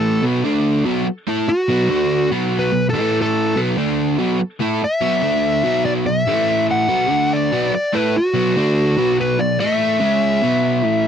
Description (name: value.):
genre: rock.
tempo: 144 BPM.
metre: 4/4.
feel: straight.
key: B minor.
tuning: A4 = 440 Hz.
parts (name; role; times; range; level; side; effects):
fuzz lead guitar; melody; 0.0-11.1 s; F#4 to F#5; -19 LUFS; left 1 dB; distortion.
overdriven semi-hollow guitar; riff; 0.0-11.1 s; A2 to A4; -18 LUFS; right 1 dB; none.
room: moderate booth ambience, RT60 0.2 s.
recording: dry, close 1970s-style studio recording.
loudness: -15 LUFS.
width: side -8 dB against mid.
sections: 0.0-11.1 A section.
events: none.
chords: 0.2 B5; 0.4 D5; 0.9 B5; 1.9 D5; 2.3 B5; 2.9 A5; 3.6 B5; 3.8 D5; 4.2 B5; 5.2 D5; 5.7 B5; 6.3 A5; 6.9 B5; 7.1 D5; 7.5 B5; 8.6 D5; 9.0 B5; 9.6 A5; 10.0 C#5; 10.4 B5.